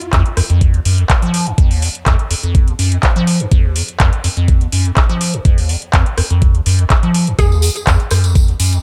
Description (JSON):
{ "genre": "acid house", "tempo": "124 BPM", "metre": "4/4", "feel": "straight", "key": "F phrygian", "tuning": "A4 = 439 Hz", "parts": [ { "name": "electro analog drum machine", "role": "drums", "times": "0.0-8.8 s", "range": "handclaps, hi-hat, rim click", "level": "-21 LUFS", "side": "equal", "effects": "none" }, { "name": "liquid acid bass", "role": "riff", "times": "0.1-8.8 s", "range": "Eb2 to F3", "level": "-17 LUFS", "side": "equal", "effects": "phaser, subtle chorus" }, { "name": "electronic kick drum", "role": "drums", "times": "0.1-8.5 s", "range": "none", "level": "-15 LUFS", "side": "equal", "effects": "none" }, { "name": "hollow square pluck", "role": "melody", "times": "7.4-7.6 s", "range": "Ab4", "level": "-25 LUFS", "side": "equal", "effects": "ensemble chorus, analog delay" }, { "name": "tambourine", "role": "percussion", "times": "7.4-8.8 s", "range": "none", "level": "-27 LUFS", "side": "equal", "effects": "none" } ], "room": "little or no reverb", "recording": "dark, warm production", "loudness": "-14 LUFS", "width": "mono", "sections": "0.0-8.8 A section", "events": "none", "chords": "none" }